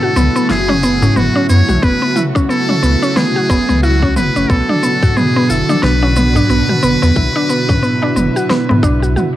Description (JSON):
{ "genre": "organic downtempo", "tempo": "90 BPM", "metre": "4/4", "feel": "swing 59% on 16ths", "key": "B dorian", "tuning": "A4 = 440 Hz", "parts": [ { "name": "trumpet with metal mute", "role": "melody", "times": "0.0-9.2 s", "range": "F#4 to C#5", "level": "-18 LUFS", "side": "equal", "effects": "cassette tape, analog delay, plate reverb" }, { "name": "ethereal airy pad", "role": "sustained chords", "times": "0.0-9.4 s", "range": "B2 to F#4", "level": "-19 LUFS", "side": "equal", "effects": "ensemble chorus, built-in reverb, sidechain pumping, cassette tape, plate reverb" }, { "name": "mallet-like synth pluck", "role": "arpeggios", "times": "0.0-9.3 s", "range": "B3 to F#4", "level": "-16 LUFS", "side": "equal", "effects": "chorus, cassette tape, analog delay, plate reverb" }, { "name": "darbuka", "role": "percussion", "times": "0.0-9.0 s", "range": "none", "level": "-20 LUFS", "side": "left 1 dB", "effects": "none" }, { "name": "warm sub bass", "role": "bass", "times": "0.2-9.2 s", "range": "E1 to F#2", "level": "-16 LUFS", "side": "equal", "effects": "tube saturation, sidechain pumping" }, { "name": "deep house drum kit", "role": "drums", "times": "0.2-9.3 s", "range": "shaker, snare drum, toms", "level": "-20 LUFS", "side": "equal", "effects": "overdrive, cassette tape" }, { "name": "electronic kick drum", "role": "drums", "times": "1.8-9.0 s", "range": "none", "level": "-16 LUFS", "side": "equal", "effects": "overdrive, cassette tape" } ], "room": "moderate small room reverb, RT60 0.6 s", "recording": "home recording on cassette", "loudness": "-11 LUFS", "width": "side -13 dB against mid", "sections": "0.0-9.4 A section", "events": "none", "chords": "0.0 F#m7; 4.5 Bm", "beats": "0.50 1.17 | 1.83 2.50 3.17 3.83 | 4.50 5.17 5.83 6.50 | 7.17 7.83 8.50 9.16" }